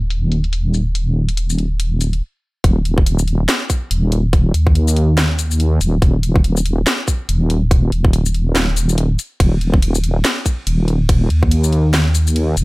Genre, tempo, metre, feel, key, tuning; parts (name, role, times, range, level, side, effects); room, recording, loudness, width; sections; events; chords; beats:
deep dubstep; 142 BPM; 4/4; swing 59% on 16ths, half-time; A4 = 439 Hz
deep soft wobble bass; bass; 0.0-12.6 s; Eb1 to Eb2; -15 LUFS; equal; chorus
garage drum kit; drums; 0.1-12.6 s; hi-hat, ride cymbal, shaker, snare drum; -21 LUFS; left 1 dB; small room ambience
electronic kick drum; drums; 2.6-11.5 s; -14 LUFS; equal; small room ambience
digital ambience; low-pass filter; -14 LUFS; side -23 dB against mid
0.0-2.6 A section; 2.6-12.6 B section
filter sweep 0.0-2.6; stop 2.2-2.6; drop 2.6-12.6
0.10 0.53 | 0.95 1.37 1.80 2.22 | 2.64 3.06 3.49 3.91 | 4.33 4.75 5.18 5.60 | 6.02 6.44 6.87 7.29 | 7.71 8.13 8.56 8.98 | 9.40 9.82 10.25 10.67 | 11.09 11.51 11.94 12.36